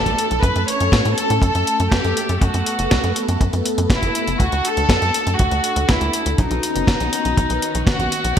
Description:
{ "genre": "italo disco", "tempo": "121 BPM", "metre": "4/4", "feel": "straight", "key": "unclear", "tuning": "A4 = 440 Hz", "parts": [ { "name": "rich chamber violin section", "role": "melody", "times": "0.0-8.4 s", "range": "D#4 to F#5", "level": "-21 LUFS", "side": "left 1 dB", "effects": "ping-pong delay" }, { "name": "phased string machine", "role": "sustained chords", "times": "0.0-8.4 s", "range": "D#3 to A4", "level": "-24 LUFS", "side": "equal", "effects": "ensemble chorus, phaser" }, { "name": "tight sequencer bass", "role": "bass", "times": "0.0-8.4 s", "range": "F#1 to A2", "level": "-22 LUFS", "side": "equal", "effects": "none" }, { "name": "clean 12-bit digital drum machine", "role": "drums", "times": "0.1-8.4 s", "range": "crash cymbal, hi-hat, snare drum", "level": "-23 LUFS", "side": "equal", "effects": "gated reverb" }, { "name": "kick drum", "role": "drums", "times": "0.1-8.4 s", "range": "none", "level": "-18 LUFS", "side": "equal", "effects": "none" } ], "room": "light reverb, studio ambience", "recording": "bright 1980s-style digital production, vinyl crackle", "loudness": "-16 LUFS", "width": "side -8 dB against mid", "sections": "0.0-8.4 A section", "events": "none", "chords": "0.4 F#m; 4.4 D; 6.4 Badd9", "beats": "| 0.43 0.93 1.42 1.92 | 2.42 2.91 3.41 3.90 | 4.40 4.89 5.39 5.89 | 6.38 6.88 7.38 7.87 | 8.37" }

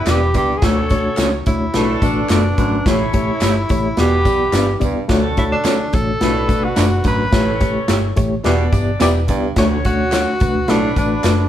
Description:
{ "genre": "uptempo 1960s-style soul", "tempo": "107 BPM", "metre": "4/4", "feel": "straight", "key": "D major", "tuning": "A4 = 440 Hz", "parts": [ { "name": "breathy tenor saxophone", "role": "melody", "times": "0.0-11.5 s", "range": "D4 to B4", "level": "-20 LUFS", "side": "equal", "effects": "none" }, { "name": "warm horn section", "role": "second line", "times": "0.0-11.5 s", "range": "A3 to D5", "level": "-27 LUFS", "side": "left 1 dB", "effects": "none" }, { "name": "barky reed electric piano", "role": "accompaniment", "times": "0.0-11.5 s", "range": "A2 to D5", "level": "-20 LUFS", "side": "left 2 dB", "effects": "overdrive, fast tremolo" }, { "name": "electric guitar through a small old amp", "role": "stabs", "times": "0.1-11.4 s", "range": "A3 to D5", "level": "-24 LUFS", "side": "right 3 dB", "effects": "tremolo" }, { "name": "vintage muted picked electric bass", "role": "bass", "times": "0.1-11.5 s", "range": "E1 to D3", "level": "-21 LUFS", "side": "equal", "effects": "none" }, { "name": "natural country drum kit", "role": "drums", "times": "0.1-11.4 s", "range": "hi-hat, kick drum, snare drum", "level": "-20 LUFS", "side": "equal", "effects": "none" }, { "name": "handclaps and tambourine", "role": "percussion", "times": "0.1-11.4 s", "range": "none", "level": "-32 LUFS", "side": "left 1 dB", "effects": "none" }, { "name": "raspy baritone saxophone", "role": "riff", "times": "0.3-10.9 s", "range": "D2 to B2", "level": "-24 LUFS", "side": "right 5 dB", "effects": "none" } ], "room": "moderate stone room reverb, RT60 1.1 s", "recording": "band playing live in one room", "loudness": "-14 LUFS", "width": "side -11 dB against mid", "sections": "0.0-11.5 A section", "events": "none", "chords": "0.0 Em7; 0.6 Dmaj7; 1.7 Bm7; 2.9 A7; 4.0 Em7; 5.1 Dmaj7; 6.2 Bm7; 7.3 A7; 8.5 Em7; 9.6 Dmaj7; 10.7 Bm7", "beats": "0.07 | 0.62 1.18 1.74 2.30 | 2.86 3.42 3.98 4.54 | 5.10 5.66 6.21 6.78 | 7.33 7.89 8.45 9.01 | 9.57 10.13 10.69 11.25" }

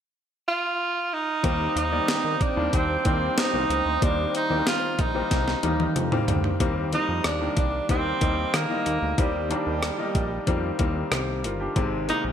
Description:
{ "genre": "1980s-style pop", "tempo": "93 BPM", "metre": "4/4", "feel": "straight", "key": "Eb major", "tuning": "A4 = 440 Hz", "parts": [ { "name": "warm tenor saxophone", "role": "melody", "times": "0.5-12.2 s", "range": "G3 to F4", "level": "-27 LUFS", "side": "right 3 dB", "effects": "none" }, { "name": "bright concert grand piano", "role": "accompaniment", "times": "1.4-12.3 s", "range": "C3 to D5", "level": "-28 LUFS", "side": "left 3 dB", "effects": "none" }, { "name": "lush unison pad", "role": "sustained chords", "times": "1.4-6.6 s", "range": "C4 to G5", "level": "-34 LUFS", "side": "right 1 dB", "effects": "chorus" }, { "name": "fat analog bass", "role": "bass", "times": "1.4-12.3 s", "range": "G1 to Eb3", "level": "-29 LUFS", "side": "equal", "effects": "none" }, { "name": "clean 12-bit digital drum machine", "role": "drums", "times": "1.4-12.2 s", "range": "hi-hat, kick drum, rim click, snare drum, toms", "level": "-26 LUFS", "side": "equal", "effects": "gated reverb" } ], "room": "moderate plate reverb, RT60 2.7 s", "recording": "bright 1980s-style digital production", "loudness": "-22 LUFS", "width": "side -9 dB against mid", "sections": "0.0-1.4 A section; 1.4-6.6 B section; 6.6-12.3 C section", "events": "drum fill 5.3-6.6", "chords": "0.0 N.C.; 1.4 Eb6; 11.8 Ab", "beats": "0.15 0.80 | 1.44 2.08 2.73 3.38 | 4.02 4.67 5.31 5.96 | 6.60 7.25 7.89 8.54 | 9.18 9.83 10.47 11.12 | 11.76" }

